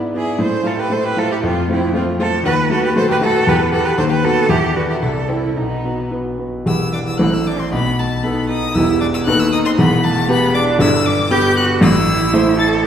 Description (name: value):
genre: quick classical-period movement for piano trio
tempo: 117 BPM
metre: 2/4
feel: rubato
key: E minor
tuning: A4 = 440 Hz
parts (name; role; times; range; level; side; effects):
- warm grand piano; accompaniment; 0.0-12.9 s; E1 to D5; -16 LUFS; equal; none
- clear violin; melody; 0.1-12.7 s; B3 to A6; -22 LUFS; left 4 dB; none
- rich cello; second line; 0.2-12.8 s; A3 to C5; -20 LUFS; right 4 dB; none
room: wet scoring stage reverb, RT60 1.8 s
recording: heard from further back in the room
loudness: -14 LUFS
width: side -9 dB against mid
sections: 0.0-6.7 A section; 6.7-12.9 B section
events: none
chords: 0.4 Am; 1.4 F; 2.5 B7/D#; 3.5 Em; 4.0 B7/D#; 4.5 Em; 5.0 Am/C; 5.6 B; 6.7 Em; 7.2 Am; 7.7 B7; 8.8 Em; 9.3 B7/D#; 9.8 Em; 10.8 G; 11.8 Am